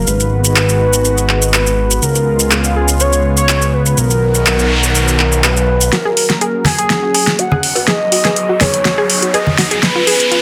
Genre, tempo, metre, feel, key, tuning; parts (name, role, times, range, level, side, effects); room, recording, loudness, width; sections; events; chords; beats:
progressive house; 123 BPM; 4/4; straight; F# major; A4 = 440 Hz
warm velvety synth lead; melody; 0.0-10.4 s; G#4 to F#5; -19 LUFS; equal; chorus, digital delay
lush unison pad; sustained chords; 0.0-10.4 s; C#3 to G#4; -23 LUFS; equal; chorus
fat analog bass; bass; 0.0-5.9 s; G#1 to C#2; -18 LUFS; equal
deep house drum kit; drums; 0.1-10.4 s; handclaps, hi-hat, shaker, snare drum; -17 LUFS; equal
noise sweep and riser; sound effects; 4.2-10.4 s; -23 LUFS; equal
analog pluck; arpeggios; 5.9-10.4 s; E#4 to G#4; -22 LUFS; equal; chorus, digital delay
congas and cowbell; percussion; 6.6-9.6 s; -22 LUFS; equal
light reverb; dense, heavily limited modern master; -13 LUFS; mono
0.0-5.9 A section; 5.9-10.4 B section
noise sweep 4.2-5.9; build-up 5.9-10.4; drum fill 5.9-10.4; riser 5.9-10.4; filter sweep on analog synth pad 5.9-10.4
0.1 G#m7; 2.0 C#7; 4.0 Bmaj7; 5.9 F#; 7.9 G#m7; 9.8 C#7
| 0.07 0.56 1.05 1.53 | 2.02 2.51 3.00 3.49 | 3.97 4.46 4.95 5.44 | 5.93 6.41 6.90 7.39 | 7.88 8.37 8.85 9.34 | 9.83 10.32